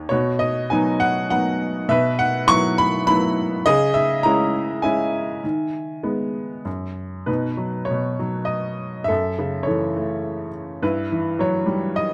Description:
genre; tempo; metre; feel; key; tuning
classical, lyrical solo piano; 96-106 BPM; 3/4; rubato; G# minor, B major from 7.3 s; A4 = 440 Hz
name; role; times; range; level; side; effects
clear upright piano; solo; 0.0-12.1 s; D#2 to C#6; -22 LUFS; equal; none
room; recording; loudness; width
light reverb; close, detailed microphones; -22 LUFS; mono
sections
0.0-7.3 A section; 7.3-12.1 B section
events
none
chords
0.1 B; 1.9 Esus2/B; 3.7 C#m; 5.4 G#m/D#; 6.7 N.C.; 7.3 B; 9.1 F#m7; 10.8 Emadd9/G

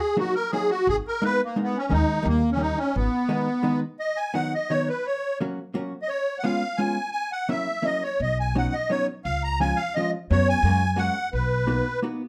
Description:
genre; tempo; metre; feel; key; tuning
musette waltz; 172 BPM; 3/4; rubato; G# minor, B major from 4.0 s; A4 = 440 Hz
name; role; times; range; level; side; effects
musette accordion; melody; 0.0-12.0 s; A#3 to A#5; -27 LUFS; equal; none
hollow-body jazz guitar; accompaniment; 0.2-12.2 s; D#3 to F#4; -30 LUFS; equal; none
upright bass; bass; 0.9-3.1, 8.2-11.8 s; G#1 to F#2; -27 LUFS; equal; none
room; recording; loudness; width
moderate studio reverb, RT60 0.6 s; none; -25 LUFS; mono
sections
0.0-4.0 A section; 4.0-12.3 B section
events
none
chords
0.0 D#m; 0.9 G#madd9; 1.9 D#sus4; 2.3 D#; 2.9 G#m; 4.0 B; 5.1 F#; 6.1 C#7; 7.1 F#7; 8.2 Badd9; 9.2 C#; 10.3 F#sus4; 10.6 F#add9; 11.3 Bmaj7

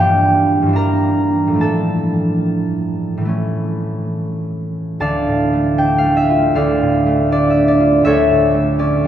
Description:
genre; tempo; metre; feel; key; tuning
classical, solo harp piece; 68-84 BPM; 4/4; rubato; D minor; A4 = 439 Hz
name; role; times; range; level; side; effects
concert harp; solo; 0.0-9.1 s; D2 to Bb5; -13 LUFS; right 1 dB; none
room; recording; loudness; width
wet cathedral reverb, RT60 5.1 s; in a vast, echoing space, lossy compression artefacts; -14 LUFS; side -10 dB against mid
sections
0.0-5.0 A section; 5.0-9.1 B section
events
none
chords
0.0 Em7b5/G; 1.6 Dm/A; 3.3 A; 5.0 Dm; 8.1 A/D

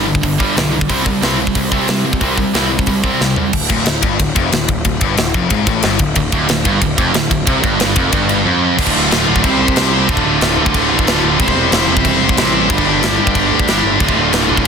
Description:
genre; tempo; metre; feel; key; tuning
heavy metal; 183 BPM; 4/4; straight; D minor; A4 = 443 Hz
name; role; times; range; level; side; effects
crunchy overdriven guitar; riff; 0.0-14.7 s; D2 to C4; -21 LUFS; right 1 dB; none
heavy high-gain guitar; riff; 0.0-3.5, 6.2-14.7 s; D2 to C4; -17 LUFS; right 12 dB; distortion
scooped high-gain guitar; riff; 0.0-14.7 s; D2 to C5; -18 LUFS; left 12 dB; distortion
fuzz picked electric bass; bass; 0.0-14.6 s; D1 to C3; -21 LUFS; equal; overdrive
tight metal drum kit; drums; 0.1-14.7 s; crash cymbal, hi-hat, kick drum, ride cymbal, snare drum, toms; -16 LUFS; equal; none
room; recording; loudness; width
little or no reverb; dense, heavily limited modern master; -12 LUFS; side -6 dB against mid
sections
0.0-3.5 A section; 3.5-8.8 B section; 8.8-14.7 C section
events
drum fill 3.2-3.5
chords
0.0 G5; 0.9 C5; 3.5 Dm; 9.4 C5; 10.1 Dm; 11.4 C/E; 12.7 G5; 14.0 Dm

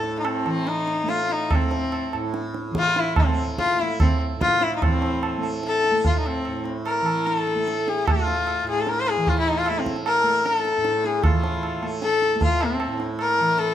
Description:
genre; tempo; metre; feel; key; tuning
indian classical, Hindustani; 142-156 BPM; 4/4; straight; A raga todi; A4 = 440 Hz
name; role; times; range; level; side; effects
clear sarangi; melody; 0.0-13.7 s; C4 to C5; -22 LUFS; left 3 dB; none
tanpura; drone; 0.0-13.7 s; A2 to A3; -29 LUFS; right 2 dB; none
tabla; percussion; 0.0-13.7 s; none; -25 LUFS; right 2 dB; none
room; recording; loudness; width
moderate recital hall reverb, RT60 1.5 s; close, detailed microphones; -20 LUFS; side -10 dB against mid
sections
0.0-4.8 A section; 4.8-13.7 B section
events
speeding up 0.0-13.7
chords
none

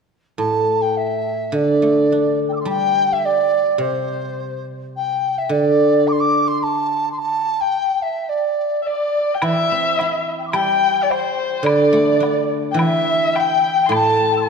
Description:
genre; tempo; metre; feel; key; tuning
chinese traditional, Chinese chamber ensemble; 107 BPM; 2/4; straight; D shang mode; A4 = 440 Hz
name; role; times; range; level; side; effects
mellow large dizi; melody; 0.4-14.5 s; C5 to E6; -19 LUFS; equal; none
guzheng; accompaniment; 0.4-7.2, 9.4-14.5 s; A2 to E4; -20 LUFS; right 1 dB; none
warm erhu; second line; 8.8-14.5 s; C5 to C6; -21 LUFS; left 5 dB; none
woodblock; percussion; 9.4-14.1 s; none; -29 LUFS; equal; none
room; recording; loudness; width
wet concert hall reverb, RT60 2.3 s; dark, warm production; -16 LUFS; side -5 dB against mid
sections
0.4-9.4 A section; 9.4-14.5 B section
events
none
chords
none

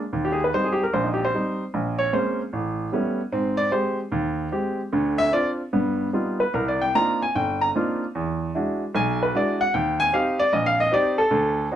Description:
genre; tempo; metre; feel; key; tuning
solo jazz; 151 BPM; 4/4; swing 66% on 8ths, rubato; Eb major; A4 = 437 Hz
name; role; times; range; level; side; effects
warm baby grand piano; solo; 0.1-11.8 s; G1 to Bb5; -21 LUFS; equal; none
room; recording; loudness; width
light reverb; close, detailed microphones; -21 LUFS; side -10 dB against mid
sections
0.1-11.8 A section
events
grand piano solo 0.1-11.8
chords
0.1 Eb6; 1.7 Bbm9; 2.5 A9; 3.3 Abmaj7; 4.9 Dm7; 5.7 G7b13; 6.5 Cm11; 8.1 E9; 9.7 Eb6

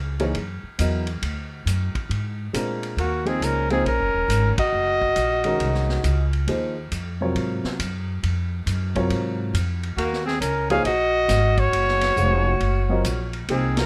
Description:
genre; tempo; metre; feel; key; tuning
modal jazz; 137 BPM; 4/4; swing 65% on 8ths; Eb dorian; A4 = 441 Hz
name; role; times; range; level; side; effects
upright bass; bass; 0.0-13.9 s; Eb1 to A#2; -27 LUFS; equal; none
warm baby grand piano; accompaniment; 0.2-13.9 s; C3 to F5; -28 LUFS; equal; none
vintage drum kit; drums; 0.2-13.8 s; hi-hat, kick drum, ride cymbal, snare drum; -34 LUFS; equal; none
warm trumpet; melody; 3.0-6.3, 10.0-13.9 s; Gb4 to F5; -25 LUFS; equal; none
clear alto saxophone; second line; 3.0-6.3, 10.0-13.9 s; Bb3 to Ab4; -30 LUFS; equal; none
room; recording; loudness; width
light reverb; none; -23 LUFS; mono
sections
0.0-3.0 A section; 3.0-13.9 B section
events
band accent 4.5, 13.7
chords
0.0 Badd9; 1.2 A#7; 3.0 Ebm7

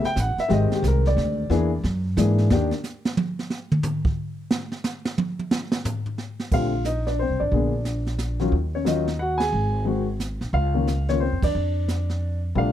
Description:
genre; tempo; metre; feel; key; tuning
jazz piano trio; 179 BPM; 3/4; swing 63% on 8ths; Bb major from 6.5 s; A4 = 440 Hz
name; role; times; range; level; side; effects
dark baby grand piano; melody; 0.0-2.7, 6.5-12.7 s; C3 to Ab5; -24 LUFS; left 2 dB; none
upright bass; bass; 0.0-2.7, 6.5-12.7 s; Ab1 to G#2; -23 LUFS; equal; none
jazz brush drum kit; drums; 0.0-12.7 s; brushed snare drum, crash cymbal, hi-hat, kick drum, ride cymbal, snare drum, toms; -26 LUFS; right 2 dB; none
room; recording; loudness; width
light reverb; dark, warm production; -21 LUFS; side -11 dB against mid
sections
0.0-6.5 A section; 6.5-12.7 B section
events
grand piano solo 0.0-6.5; drum solo 2.5-6.5; band accent 9.4, 11.4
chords
0.0 A7(no3); 0.5 Abmaj7; 1.5 E7#11; 2.5 N.C.; 6.5 Bbadd9; 7.5 Bb; 8.5 Ebm7; 9.5 N.C.; 10.5 Db69; 11.5 Dm/F

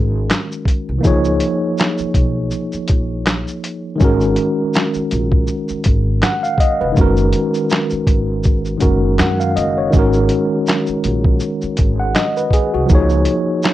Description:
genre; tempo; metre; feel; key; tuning
lo-fi hip hop; 81 BPM; 4/4; swing 55% on 16ths; unclear; A4 = 440 Hz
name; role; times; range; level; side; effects
tine electric piano; accompaniment; 0.0-13.7 s; D#3 to F#5; -17 LUFS; equal; medium stereo tremolo, cassette tape, low-pass filter
upright bass; bass; 0.0-13.2 s; E#1 to F#2; -19 LUFS; equal; none
lo-fi sampler-style drum kit; drums; 0.3-13.7 s; handclaps, hi-hat, kick drum, shaker, snare drum; -16 LUFS; equal; vintage 12-bit sampler grit
room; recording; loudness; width
light reverb; none; -14 LUFS; side -14 dB against mid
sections
0.0-13.7 A section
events
none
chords
0.0 G#sus2; 1.0 C#13; 4.0 G#sus2; 7.0 F#6; 9.9 G#sus2; 12.9 C#69

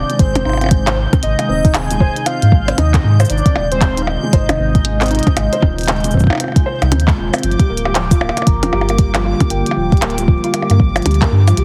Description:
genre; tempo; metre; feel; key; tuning
IDM; 116 BPM; 4/4; swing 62% on 16ths; G phrygian; A4 = 440 Hz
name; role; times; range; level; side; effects
warm velvety synth lead; melody; 0.0-10.2 s; C5 to Bb5; -25 LUFS; equal; chorus, tremolo, delay
glassy FM pad; sustained chords; 0.0-11.6 s; C3 to F4; -26 LUFS; equal; ensemble chorus, built-in reverb
felt-muted upright piano; arpeggios; 0.0-11.6 s; F3 to C5; -24 LUFS; equal; digital delay
warm sub bass; bass; 0.0-11.6 s; D1 to Ab2; -19 LUFS; equal; none
bubbling stepped-filter texture; texture; 0.0-11.6 s; D6 to G6; -30 LUFS; equal; chorus, built-in reverb
glitchy drum kit; drums; 0.1-11.6 s; cabasa, handclaps, hi-hat, percussion blips; -22 LUFS; equal; none
electronic kick drum; drums; 0.2-11.3 s; none; -14 LUFS; equal; none
room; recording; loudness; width
light reverb, digital ambience; heavily compressed radio sound, multiband compression; -14 LUFS; mono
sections
0.0-11.6 A section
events
none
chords
0.0 Ab; 7.4 Gm7

